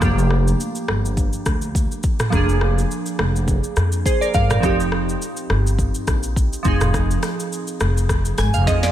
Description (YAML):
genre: afrobeats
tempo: 104 BPM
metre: 4/4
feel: swing 55% on 16ths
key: F dorian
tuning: A4 = 440 Hz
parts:
  - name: glassy digital keys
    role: accompaniment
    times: 0.0-8.9 s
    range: F3 to Ab5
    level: -23 LUFS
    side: right 2 dB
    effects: chorus
  - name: upright bass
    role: bass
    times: 0.0-8.9 s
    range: F1 to F2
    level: -20 LUFS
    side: equal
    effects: none
  - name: afro-pop drum kit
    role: drums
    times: 0.0-8.9 s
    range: hi-hat, kick drum, rim click, shaker, snare drum, toms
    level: -22 LUFS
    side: equal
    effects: none
room: light reverb, digital ambience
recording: none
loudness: -17 LUFS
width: side -12 dB against mid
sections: 0.0-8.9 A section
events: synth keys fill 8.1-8.9; drum fill 8.7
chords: 0.0 Gm7/F; 2.3 Bb7/F; 4.6 Eb69/F; 6.7 Fm7